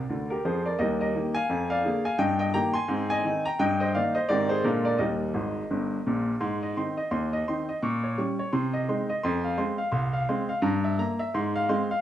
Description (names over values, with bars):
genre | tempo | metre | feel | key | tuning
jazz, stride piano | 171 BPM | 4/4 | swing 59% on 8ths | Eb major, Ab major from 6.4 s | A4 = 440 Hz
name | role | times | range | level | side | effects
clear baby grand piano | solo | 0.0-12.0 s | G1 to Db6 | -24 LUFS | equal | none
room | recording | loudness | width
wet club reverb, RT60 0.6 s | heard from further back in the room | -24 LUFS | side -11 dB against mid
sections
0.0-6.4 A section; 6.4-12.0 B section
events
grand piano fill 0.0-0.8, 5.4-6.4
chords
0.0 Bb; 0.8 Eb; 1.5 Bb7/F; 2.2 Eb/G; 2.9 Ab; 3.6 Eb/G; 4.3 Abmaj7; 4.7 Bb7; 5.0 Eb; 6.4 Ab; 7.8 Gdim/Bb; 8.5 Ab/C; 9.2 Fm; 10.6 Edim/G; 11.3 Fm/Ab